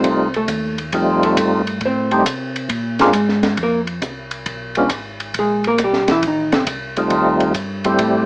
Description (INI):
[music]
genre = soul jazz organ trio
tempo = 136 BPM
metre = 4/4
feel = swing 68% on 8ths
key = F mixolydian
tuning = A4 = 439 Hz
[part]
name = percussive tonewheel organ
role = melody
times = 0.0-8.3 s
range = G3 to G4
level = -15 LUFS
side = equal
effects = slow rotary speaker, overdrive, chorus vibrato
[part]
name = vintage hollow-body jazz guitar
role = accompaniment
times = 0.0-6.6 s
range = C3 to C5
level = -18 LUFS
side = equal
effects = none
[part]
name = mellow tonewheel organ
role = bass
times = 0.0-8.3 s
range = G#1 to C3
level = -26 LUFS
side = equal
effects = slow rotary speaker
[part]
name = compact cocktail drum kit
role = drums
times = 0.0-8.1 s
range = hi-hat, kick drum, ride cymbal, snare drum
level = -23 LUFS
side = equal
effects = none
[sound]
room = moderate studio ambience, RT60 0.5 s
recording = small speaker sound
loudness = -15 LUFS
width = side -28 dB against mid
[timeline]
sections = 0.0-8.3 A section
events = hollow-body jazz guitar solo 0.0-8.3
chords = 0.0 F9; 2.7 Bb7sus2; 4.5 B5; 6.2 F9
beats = 0.05 0.49 | 0.94 1.38 1.82 2.26 | 2.70 3.14 3.58 4.03 | 4.47 4.91 5.35 5.79 | 6.23 6.67 7.12 7.56 | 8.00